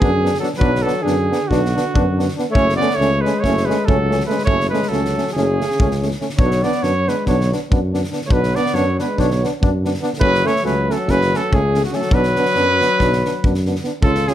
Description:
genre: balkan folk, Balkan brass band.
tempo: 282 BPM (eighths).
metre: 9/8.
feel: straight.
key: unclear.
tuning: A4 = 440 Hz.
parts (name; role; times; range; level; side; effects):
mellow trumpet; melody; 0.0-14.3 s; F#4 to D5; -20 LUFS; right 2 dB; plate reverb.
mellow alto saxophone; second line; 0.0-14.3 s; C#3 to E#4; -24 LUFS; left 3 dB; none.
bright trombone; accompaniment; 0.0-14.3 s; C#4 to E#4; -25 LUFS; left 3 dB; none.
warm euphonium; accompaniment; 0.0-14.3 s; A3 to C#4; -25 LUFS; right 4 dB; none.
mellow tuba; bass; 0.0-14.3 s; F#1 to F#2; -20 LUFS; equal; none.
loose indie drum kit; percussion; 0.0-14.3 s; kick drum, snare drum; -22 LUFS; equal; none.
room: light reverb.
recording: none.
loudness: -15 LUFS.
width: side -11 dB against mid.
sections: 0.0-14.0 A section.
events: none.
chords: 0.0 Bm; 2.5 F#m; 6.4 Bm; 10.2 F#m; 12.1 Bm.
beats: 0.17 0.39 | 0.60 0.82 1.03 1.25 1.47 1.68 1.89 2.11 2.32 | 2.54 2.75 2.96 3.18 3.39 3.61 3.82 4.04 4.25 | 4.46 4.67 4.89 5.10 5.32 5.53 5.74 5.96 6.17 | 6.38 6.59 6.81 7.02 7.23 7.45 7.66 7.87 8.09 | 8.30 8.51 8.72 8.94 9.15 9.36 9.57 9.79 10.00 | 10.21 10.42 10.63 10.85 11.06 11.27 11.48 11.70 11.91 | 12.12 12.33 12.54 12.75 12.97 13.18 13.39 13.60 13.81 | 14.02 14.23.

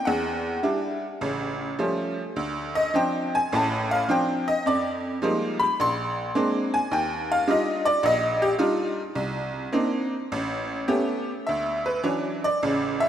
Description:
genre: solo jazz.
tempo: 105 BPM.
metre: 4/4.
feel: swing 68% on 8ths, rubato.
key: unclear.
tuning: A4 = 443 Hz.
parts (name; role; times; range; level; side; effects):
tack piano; solo; 0.0-13.1 s; A1 to C6; -22 LUFS; equal; none.
room: wet lush hall reverb, RT60 2.4 s.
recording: rough home demo mix.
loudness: -23 LUFS.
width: side -10 dB against mid.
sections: 0.0-11.5 A section; 11.5-13.1 B section.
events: honky-tonk piano solo 0.0-11.5.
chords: 0.1 Em9; 1.2 Aaug7; 2.4 Dm7; 4.7 Fm11; 5.8 Bb9; 6.9 Ebmaj9; 9.2 Cm9; 10.3 A9; 11.5 Dmaj9.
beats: | 0.06 0.63 1.21 1.78 | 2.37 2.95 3.52 4.09 | 4.66 5.22 5.79 6.36 | 6.92 7.49 8.04 8.60 | 9.16 9.73 10.31 10.89 | 11.47 12.04 12.61.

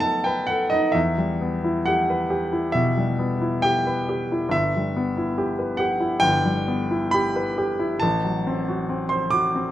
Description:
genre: classical, romantic nocturne for solo piano.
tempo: 64-72 BPM.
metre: 4/4.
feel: rubato.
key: E minor.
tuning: A4 = 444 Hz.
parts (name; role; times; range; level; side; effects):
clear baby grand piano; solo; 0.0-9.7 s; G1 to D6; -20 LUFS; equal; none.
room: moderate recital hall reverb, RT60 1.2 s.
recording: none.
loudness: -20 LUFS.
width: side -13 dB against mid.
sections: 0.0-9.7 A section.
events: none.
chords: 0.0 B7/F#; 0.9 Em; 4.5 Em/G; 8.0 F#dim/A.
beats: 0.03 | 0.95 1.87 2.74 3.64 | 4.53 5.37 6.22 7.13 | 8.02 8.89.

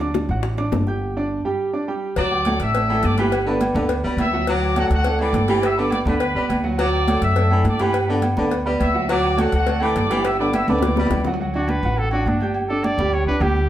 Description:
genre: latin, salsa.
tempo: 208 BPM.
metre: 4/4.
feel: straight.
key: D major.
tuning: A4 = 440 Hz.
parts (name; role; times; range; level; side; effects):
bright concert grand piano; accompaniment; 0.0-13.7 s; F#3 to G6; -23 LUFS; right 2 dB; none.
upright bass; bass; 0.0-13.7 s; G1 to G2; -23 LUFS; equal; none.
bongos and cowbell; percussion; 0.0-11.3 s; none; -29 LUFS; left 6 dB; none.
congas; percussion; 0.0-13.7 s; none; -27 LUFS; equal; none.
timbales and agogo bells; percussion; 0.0-13.6 s; none; -28 LUFS; right 2 dB; none.
bright trumpet section; melody; 2.2-11.2 s; F#4 to E6; -24 LUFS; left 1 dB; none.
clear baritone saxophone; second line; 2.2-11.2 s; D3 to G3; -26 LUFS; left 2 dB; none.
clear trumpet; melody; 11.5-13.7 s; D4 to D5; -25 LUFS; equal; plate reverb.
room: wet studio reverb, RT60 0.8 s.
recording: heard from further back in the room.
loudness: -18 LUFS.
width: side -12 dB against mid.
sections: 0.0-2.2 A section; 2.2-11.4 B section; 11.4-13.7 C section.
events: break 1.0-2.2; drum fill 10.7-11.4; trumpet solo 11.4-13.7.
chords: 0.0 D; 1.0 G5; 2.2 D; 3.3 G; 4.5 D; 5.6 G; 6.8 D; 7.9 G; 9.1 D; 10.2 G; 11.4 D; 12.5 G5.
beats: 0.15 0.44 0.73 | 1.01 1.30 1.59 1.88 | 2.17 2.46 2.75 3.03 | 3.32 3.61 3.90 4.19 | 4.48 4.76 5.05 5.34 | 5.63 5.92 6.21 6.50 | 6.79 7.07 7.36 7.65 | 7.94 8.23 8.52 8.80 | 9.09 9.38 9.67 9.96 | 10.24 10.53 10.82 11.11 | 11.40 11.69 11.97 12.26 | 12.55 12.84 13.12 13.41.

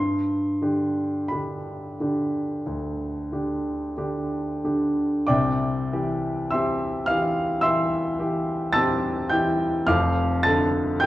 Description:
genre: classical, romantic nocturne for solo piano.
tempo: 44-55 BPM.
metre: 4/4.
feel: rubato.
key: C major.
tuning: A4 = 441 Hz.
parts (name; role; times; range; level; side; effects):
warm grand piano; solo; 0.0-11.1 s; F1 to A6; -22 LUFS; equal; none.
room: wet recital hall reverb, RT60 1.4 s.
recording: worn, warbling old tape, cassette tape, warbly pitch drift.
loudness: -22 LUFS.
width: side -15 dB against mid.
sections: 0.0-5.3 A section; 5.3-11.1 B section.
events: none.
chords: 0.0 G; 5.3 C; 9.9 Dm/F.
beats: 1.32 2.66 3.96 | 5.30 6.53 7.64 8.76 | 9.90 11.04.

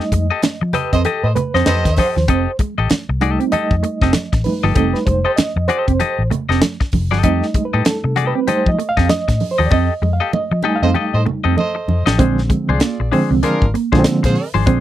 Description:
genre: funk.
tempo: 97 BPM.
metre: 4/4.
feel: swing 60% on 16ths.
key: F mixolydian.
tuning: A4 = 440 Hz.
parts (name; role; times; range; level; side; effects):
semi-hollow electric guitar; accompaniment; 0.0-14.8 s; D4 to Eb5; -20 LUFS; left 10 dB; none.
reed electric piano; stabs; 0.0-14.8 s; D3 to Ab5; -20 LUFS; right 2 dB; fast tremolo.
tight funk drum kit; drums; 0.0-14.8 s; hi-hat, kick drum, snare drum; -18 LUFS; equal; none.
mellow electric guitar; riff; 0.1-14.8 s; F3 to C4; -22 LUFS; right 9 dB; none.
vintage muted fingered electric bass; bass; 0.1-14.8 s; F1 to F3; -18 LUFS; left 1 dB; none.
congas; percussion; 0.1-12.1 s; none; -25 LUFS; right 4 dB; none.
warm horn section; second line; 0.9-2.1, 10.8-14.5 s; D4 to Eb5; -22 LUFS; right 2 dB; none.
room: little or no reverb.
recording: dry, close 1970s-style studio recording.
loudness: -14 LUFS.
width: side -12 dB against mid.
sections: 0.0-12.2 A section; 12.2-14.8 B section.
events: band accent 0.0-2.3, 9.7-12.2; reed electric piano solo 0.0-12.2; drum fill 9.7-12.2.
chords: 0.0 F9; 12.2 Bb9.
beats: 0.43 1.05 1.67 | 2.29 2.91 3.53 4.14 | 4.76 5.38 6.00 6.62 | 7.24 7.86 8.48 9.10 | 9.72 10.34 10.95 11.57 | 12.19 12.81 13.43 14.05 | 14.67.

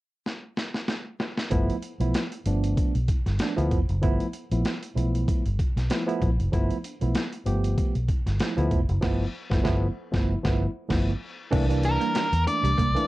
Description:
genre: funk.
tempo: 96 BPM.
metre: 4/4.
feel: swing 56% on 16ths.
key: G mixolydian.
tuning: A4 = 437 Hz.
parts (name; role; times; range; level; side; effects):
breakbeat sampler-style drum kit; drums; 0.3-13.1 s; crash cymbal, hi-hat, kick drum, snare drum; -27 LUFS; equal; none.
tine electric piano; stabs; 1.5-13.1 s; E3 to G4; -29 LUFS; right 1 dB; medium stereo tremolo, plate reverb.
vintage muted fingered electric bass; bass; 1.5-12.9 s; F1 to E2; -25 LUFS; equal; none.
clean electric guitar; riff; 11.5-12.9 s; G3 to C4; -32 LUFS; right 7 dB; none.
octave-fuzz lead guitar; melody; 11.9-13.1 s; Bb4 to D5; -25 LUFS; equal; distortion, plate reverb.
room: light reverb.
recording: cassette tape.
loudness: -23 LUFS.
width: side -18 dB against mid.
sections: 0.0-1.5 A section; 1.5-11.5 B section; 11.5-13.1 C section.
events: drum fill 0.3-1.5; band accent 9.0-11.5.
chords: 0.0 N.C.; 1.5 G13; 11.5 C13.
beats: 0.27 0.89 | 1.52 2.14 2.77 3.40 | 4.02 4.65 5.27 5.90 | 6.53 7.15 7.78 8.40 | 9.03 9.66 10.28 10.91 | 11.53 12.16 12.78.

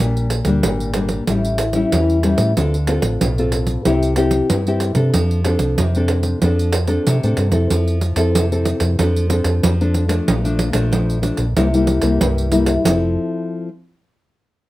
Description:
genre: samba and choro.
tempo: 93 BPM.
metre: 4/4.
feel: straight.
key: F major.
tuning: A4 = 437 Hz.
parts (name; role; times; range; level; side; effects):
nylon-string guitar; accompaniment; 0.0-13.7 s; F2 to A4; -19 LUFS; left 2 dB; none.
hollow-body short-scale fingered electric bass; bass; 0.0-13.2 s; F1 to C3; -19 LUFS; equal; none.
pandeiro; percussion; 0.0-13.0 s; none; -22 LUFS; right 3 dB; none.
room: light reverb.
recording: rough home demo mix.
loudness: -15 LUFS.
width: side -17 dB against mid.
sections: 0.0-7.7 A section; 7.7-12.9 B section; 12.9-14.7 C section.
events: none.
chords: 0.0 Gm/Bb; 1.3 A7; 2.6 Dm7; 3.9 C; 5.1 F6; 7.7 Fmaj7; 9.0 Dm7/F; 10.3 Bbmaj7; 11.6 C7; 12.9 Fmaj7.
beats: | 0.00 0.64 1.28 1.92 | 2.57 3.21 3.85 4.50 | 5.14 5.78 6.42 7.07 | 7.71 8.35 9.00 9.64 | 10.28 10.93 11.57 12.21 | 12.86 13.50.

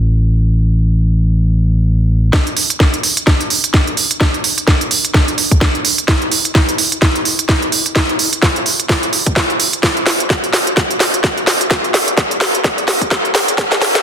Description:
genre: bass house.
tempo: 128 BPM.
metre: 4/4.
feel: swing 58% on 16ths.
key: unclear.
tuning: A4 = 441 Hz.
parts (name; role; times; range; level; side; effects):
growling FM bass; bass; 0.0-2.3 s; A1; -11 LUFS; equal; tube saturation, sidechain pumping.
electronic kick drum; drums; 2.3-13.7 s; none; -17 LUFS; equal; none.
garage drum kit; drums; 2.3-14.0 s; hi-hat, snare drum; -13 LUFS; right 1 dB; low-pass filter on snare, low-pass filter on hats, low-pass filter on room.
room: moderate digital room reverb, RT60 1.1 s.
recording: dense, heavily limited modern master, high-pass filter.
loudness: -12 LUFS.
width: side -8 dB against mid.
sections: 0.0-2.3 A section; 2.3-14.0 B section.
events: build-up 2.3-14.0; drum fill 2.3-14.0.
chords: none.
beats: | 0.46 0.93 1.40 1.86 | 2.33 2.80 3.27 3.74 | 4.21 4.68 5.14 5.61 | 6.08 6.55 7.02 7.49 | 7.96 8.43 8.89 9.36 | 9.83 10.30 10.77 11.24 | 11.71 12.18 12.64 13.11 | 13.58.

